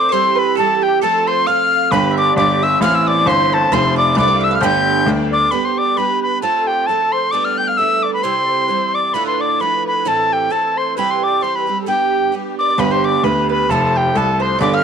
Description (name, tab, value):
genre	celtic folk, Celtic polka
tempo	132 BPM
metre	2/4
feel	swing 57% on 8ths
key	G mixolydian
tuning	A4 = 440 Hz
part	bright wooden whistle	melody	0.0-14.8 s	G5 to G6	-16 LUFS	left 1 dB	none
part	mandolin	second line	0.0-5.3, 12.6-14.8 s	G4 to G5	-23 LUFS	right 10 dB	none
part	musette accordion	second line	0.0-14.8 s	G4 to G5	-25 LUFS	left 14 dB	none
part	picked twelve-string acoustic guitar	accompaniment	0.0-14.8 s	D2 to G4	-21 LUFS	right 12 dB	none
part	clear grand piano	bass	1.9-5.4, 12.8-14.8 s	F1 to D2	-18 LUFS	left 2 dB	none
room	light reverb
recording	1960s-style stereo with parts hard left and right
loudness	-13 LUFS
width	side -7 dB against mid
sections	0.0-5.5 A section; 5.5-12.8 B section; 12.8-14.8 B section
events	none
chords	0.1 C/E; 1.0 F; 1.9 G; 2.8 Amadd9; 3.7 F6; 4.6 Gadd9; 5.5 G; 6.4 F; 7.3 Gadd9; 8.2 C; 9.1 Dmadd9; 10.1 Am; 11.0 C; 11.9 G; 13.7 F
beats	| 0.11 0.57 | 1.02 1.47 | 1.92 2.37 | 2.82 3.27 | 3.72 4.17 | 4.62 5.07 | 5.52 5.97 | 6.42 6.88 | 7.33 7.78 | 8.24 8.69 | 9.14 9.60 | 10.05 10.51 | 10.96 11.42 | 11.88 12.33 | 12.79 13.24 | 13.70 14.15 | 14.61